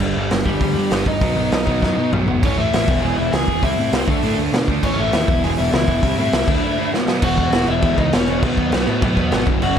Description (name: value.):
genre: punk rock.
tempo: 200 BPM.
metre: 4/4.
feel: straight.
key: unclear.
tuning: A4 = 439 Hz.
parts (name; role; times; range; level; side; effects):
overdriven semi-hollow guitar; riff; 0.0-9.8 s; E2 to D4; -22 LUFS; right 12 dB; none.
sludgy distorted guitar; riff; 0.0-9.8 s; E2 to D4; -25 LUFS; left 13 dB; overdrive.
fuzz picked electric bass; bass; 0.0-9.8 s; E1 to B2; -24 LUFS; equal; overdrive.
raw garage drum kit; drums; 0.0-9.8 s; crash cymbal, hi-hat, kick drum, snare drum, toms; -20 LUFS; equal; none.
smooth overdriven lead guitar; melody; 0.5-9.8 s; G3 to G#5; -22 LUFS; left 2 dB; none.
room: light reverb.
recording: none.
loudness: -16 LUFS.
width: side -8 dB against mid.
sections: 0.0-2.4 A section; 2.4-7.2 B section; 7.2-9.8 C section.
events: drum fill 1.8-2.4, 6.9.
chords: 0.0 G; 1.2 B; 2.4 A; 2.9 E; 3.6 C; 4.1 D5; 4.8 A; 5.3 E5; 6.0 C; 6.5 D5; 6.9 B5; 7.2 E5; 8.4 B.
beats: | 0.01 0.32 0.62 0.92 | 1.22 1.52 1.83 2.13 | 2.43 2.73 3.03 3.33 | 3.63 3.94 4.24 4.54 | 4.84 5.14 5.44 5.74 | 6.04 6.34 6.64 6.94 | 7.24 7.54 7.83 8.13 | 8.43 8.73 9.03 9.33 | 9.63.